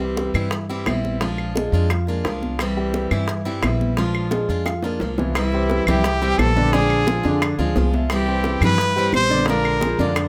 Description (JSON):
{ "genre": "latin, Cuban son and guajira", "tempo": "174 BPM", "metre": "4/4", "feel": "straight", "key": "C major", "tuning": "A4 = 439 Hz", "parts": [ { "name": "picked steel-string acoustic guitar", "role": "accompaniment", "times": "0.0-10.2 s", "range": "C3 to F4", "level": "-28 LUFS", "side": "equal", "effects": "none" }, { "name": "dark baby grand piano", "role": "arpeggios", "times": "0.0-10.3 s", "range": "D3 to F5", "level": "-27 LUFS", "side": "equal", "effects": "none" }, { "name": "upright bass", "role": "bass", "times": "0.0-10.3 s", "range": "Bb1 to G2", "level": "-26 LUFS", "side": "equal", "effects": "none" }, { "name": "congas", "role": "percussion", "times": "0.0-10.3 s", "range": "none", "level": "-30 LUFS", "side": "equal", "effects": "none" }, { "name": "bongos", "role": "percussion", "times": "0.2-10.3 s", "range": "none", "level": "-31 LUFS", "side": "equal", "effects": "none" }, { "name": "claves", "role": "percussion", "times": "0.3-10.3 s", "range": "none", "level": "-30 LUFS", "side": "equal", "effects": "none" }, { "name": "clear trumpet", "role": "melody", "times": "5.4-10.1 s", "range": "E4 to C5", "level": "-24 LUFS", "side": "equal", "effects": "tape echo" } ], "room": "moderate studio reverb, RT60 0.6 s", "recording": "close, detailed microphones", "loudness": "-20 LUFS", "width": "mono", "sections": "0.0-5.4 A section; 5.4-10.3 B section", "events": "drum fill 4.3-5.4", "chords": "0.0 C; 1.2 Bb7; 2.6 C; 4.0 Bb7; 5.4 C; 6.7 Bb7; 8.1 C; 9.5 Bb7" }